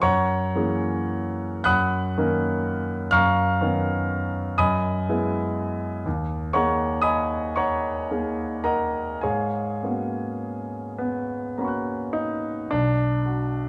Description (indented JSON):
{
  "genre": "classical, impressionist solo piano",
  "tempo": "34-42 BPM (dotted quarters)",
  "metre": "6/8",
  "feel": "rubato",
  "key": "G# dorian",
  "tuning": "A4 = 443 Hz",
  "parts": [
    { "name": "clear concert grand piano", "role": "solo", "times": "0.0-13.7 s", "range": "B1 to F#6", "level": "-25 LUFS", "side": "equal", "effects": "none" }
  ],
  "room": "moderate recital hall reverb, RT60 1.5 s",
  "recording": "close, detailed microphones",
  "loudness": "-25 LUFS",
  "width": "mono",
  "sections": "0.0-12.7 A section",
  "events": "none",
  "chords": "0.0 F#9; 1.6 D#m7/F#; 3.1 C#13/F#; 4.6 Emaj9/F#; 6.1 D#7sus4; 9.2 G#m11; 12.7 Bm"
}